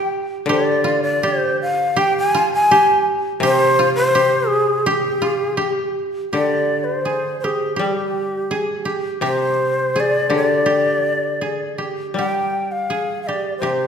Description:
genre	japanese traditional, Japanese chamber music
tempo	82 BPM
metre	2/4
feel	rubato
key	G in sen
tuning	A4 = 441 Hz
part	breathy shakuhachi	melody	0.0-13.9 s	G4 to Ab5	-18 LUFS	left 1 dB	none
part	koto	second line	0.0-13.9 s	F4 to Ab4	-22 LUFS	right 2 dB	none
part	koto	accompaniment	0.5-13.9 s	C3 to G3	-25 LUFS	left 4 dB	none
room	wet scoring stage reverb, RT60 1.8 s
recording	recorded in a church or concert hall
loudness	-16 LUFS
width	side -7 dB against mid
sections	0.0-6.4 A section; 6.4-13.9 B section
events	none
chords	none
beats	| 0.49 1.24 | 2.00 2.72 | 3.43 4.15 | 4.88 5.61 | 6.35 7.09 | 7.81 8.52 | 9.23 9.96 | 10.69 11.43 | 12.18 12.93 | 13.65

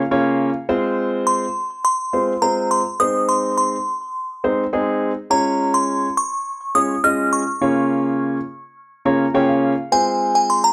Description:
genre	dance-pop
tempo	104 BPM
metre	4/4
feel	straight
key	F minor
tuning	A4 = 436 Hz
part	warm concert grand piano	accompaniment	0.0-10.7 s	Db3 to Bb5	-21 LUFS	equal	none
part	glassy synth bell	melody	1.3-10.7 s	Ab5 to F6	-21 LUFS	equal	chorus
room	wet studio reverb, RT60 0.6 s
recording	none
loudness	-19 LUFS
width	mono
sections	0.0-10.7 A section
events	grand piano fill 0.0-0.7, 8.8-9.9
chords	0.0 Bbm/Db; 0.7 Fm; 3.0 Ab; 5.3 Db; 7.6 Bbm/Db; 9.9 Fm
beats	0.11 | 0.69 1.27 1.84 2.42 | 3.00 3.58 4.15 4.73 | 5.30 5.88 6.46 7.04 | 7.61 8.19 8.77 9.34 | 9.92 10.50

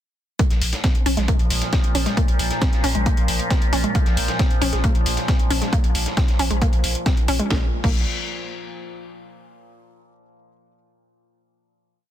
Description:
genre	driving peak-time techno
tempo	135 BPM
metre	4/4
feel	straight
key	Bb minor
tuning	A4 = 439 Hz
part	wide unison pluck	riff	0.4-8.0 s	Ab3 to Db4	-26 LUFS	equal	sidechain pumping, ping-pong delay
part	overtone-sweeping drone	drone	1.0-7.5 s	Bb2 to F3	-28 LUFS	equal	chorus, built-in reverb, sidechain pumping
part	dusty soul sampler-style drum kit	drums	0.4-7.4 s	hi-hat, snare drum	-32 LUFS	left 1 dB	overdrive, sidechain pumping on hats, high-pass filter on hats, high-pass filter on snare, high-pass filter on room
part	electronic kick drum	drums	0.4-7.9 s	none	-20 LUFS	equal	none
part	techno drum kit	drums	0.4-7.9 s	crash cymbal, hi-hat, snare drum	-28 LUFS	left 1 dB	sidechain pumping on hats, sidechain pumping on cymbals
part	saturated sub bass	bass	0.5-8.0 s	Bb1	-25 LUFS	equal	tube saturation, sidechain pumping, low-pass filter
room	little or no reverb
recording	dense, heavily limited modern master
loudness	-18 LUFS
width	side -11 dB against mid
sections	0.4-7.5 groove; 7.5-9.3 final chord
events	none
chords	0.4 Bb5; 7.5 N.C.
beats	| 0.39 0.84 1.28 1.73 | 2.17 2.62 3.06 3.50 | 3.95 4.39 4.84 5.28 | 5.73 6.17 6.62 7.06 | 7.50 7.95

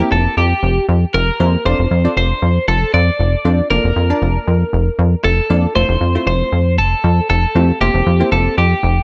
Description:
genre	dance-pop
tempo	117 BPM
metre	4/4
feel	straight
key	F major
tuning	A4 = 440 Hz
part	twelve-string electric guitar	melody	0.0-9.0 s	G4 to D5	-20 LUFS	equal	spring reverb, delay
part	wavetable chord stab	accompaniment	0.0-8.8 s	A3 to A5	-23 LUFS	equal	none
part	plucky analog bass	bass	0.0-9.0 s	F1 to F2	-16 LUFS	equal	none
room	little or no reverb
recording	none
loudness	-15 LUFS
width	mono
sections	0.0-9.0 A section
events	none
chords	0.0 C7/F; 1.7 Dm7/F; 3.7 Bbmaj7/F; 5.8 Fmaj7; 7.8 C7/F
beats	0.12 0.63 1.14 | 1.65 2.17 2.68 3.19 | 3.71 4.22 4.73 5.24 | 5.76 6.27 6.78 7.29 | 7.81 8.32 8.83

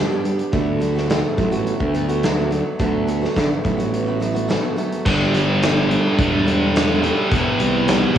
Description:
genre	quiet-loud alternative rock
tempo	106 BPM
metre	4/4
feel	straight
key	G major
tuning	A4 = 440 Hz
part	picked steel-string acoustic guitar	arpeggios	0.0-8.2 s	E2 to G4	-24 LUFS	right 3 dB	cassette tape, analog delay
part	fuzz picked electric bass	bass	0.0-8.2 s	E1 to D3	-21 LUFS	equal	overdrive
part	huge arena drum kit	drums	0.2-8.2 s	crash cymbal, hi-hat, kick drum, snare drum	-22 LUFS	right 1 dB	cassette tape
part	fuzz guitar	riff	5.1-8.2 s	D3 to G4	-22 LUFS	left 9 dB	distortion, cassette tape
part	scooped high-gain guitar	riff	5.1-8.2 s	E2 to G3	-20 LUFS	right 4 dB	distortion, cassette tape
room	light reverb, studio ambience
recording	home recording on cassette, studio reverb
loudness	-16 LUFS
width	side -10 dB against mid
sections	0.0-5.1 A section; 5.1-8.2 B section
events	none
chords	0.0 G; 0.5 D6; 5.1 Gsus2; 7.3 Em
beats	| 0.53 1.10 1.67 2.23 | 2.80 3.36 3.93 4.49 | 5.06 5.62 6.19 6.75 | 7.31 7.88

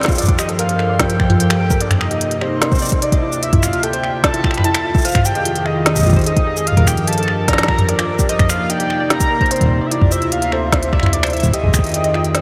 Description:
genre	IDM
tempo	148 BPM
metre	4/4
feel	straight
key	G minor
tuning	A4 = 441 Hz
part	warbly nostalgic lead	melody	0.0-12.4 s	C5 to B5	-23 LUFS	equal	analog chorus, cassette tape, analog delay
part	warbly tape-like pad	sustained chords	0.0-12.4 s	D2 to G5	-23 LUFS	equal	chorus, built-in reverb, sidechain pumping
part	soft round pluck	arpeggios	0.0-12.4 s	E4 to Eb5	-28 LUFS	equal	chorus, diffuse ambient delay
part	organic electronic drum kit	drums	0.0-12.4 s	finger snaps, hi-hat, shaker, snare drum, toms	-22 LUFS	equal	none
part	electronic kick drum	drums	0.1-11.8 s	none	-18 LUFS	equal	none
room	wet cathedral reverb, RT60 5.7 s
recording	dreamy mix soaked in reverb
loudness	-16 LUFS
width	mono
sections	0.2-12.4 A section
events	drum fill 0.0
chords	0.2 Gm9; 1.8 Cm9; 3.2 Dm9; 5.0 Fm9; 6.7 Gm9; 8.3 Cm9; 9.7 Dm9; 11.5 Fm9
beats	| 0.18 0.59 0.99 1.40 | 1.80 2.21 2.62 3.02 | 3.43 3.83 4.24 4.64 | 5.05 5.45 5.86 6.26 | 6.67 7.08 7.48 7.89 | 8.29 8.70 9.10 9.51 | 9.91 10.32 10.72 11.13 | 11.54 11.94 12.35

